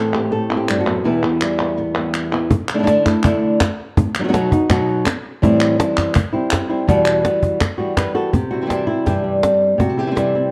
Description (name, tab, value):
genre	flamenco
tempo	165 BPM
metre	4/4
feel	straight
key	E minor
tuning	A4 = 440 Hz
part	flamenco guitar	melody	0.0-10.5 s	E2 to B4	-19 LUFS	equal	none
part	flamenco guitar	stabs	0.0-2.5, 8.3-10.5 s	E2 to E4	-26 LUFS	equal	none
part	palmas hand claps	percussion	0.1-8.2 s	none	-27 LUFS	equal	none
part	cajon	percussion	2.5-10.3 s	none	-22 LUFS	equal	none
room	moderate stone room reverb, RT60 1.3 s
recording	dark, warm production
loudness	-18 LUFS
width	mono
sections	0.0-2.5 A section; 2.5-8.3 B section; 8.3-10.5 C section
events	none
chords	0.0 Amadd9; 1.1 Em; 2.5 Dsus2; 4.0 B; 5.4 Am7; 6.9 Emadd9; 8.3 C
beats	0.33 0.69 | 1.06 1.42 1.78 2.15 | 2.51 2.88 3.24 3.60 | 3.97 4.33 4.70 5.06 | 5.42 5.79 6.15 6.52 | 6.88 7.24 7.61 7.97 | 8.34 8.70 9.07 9.43 | 9.80 10.16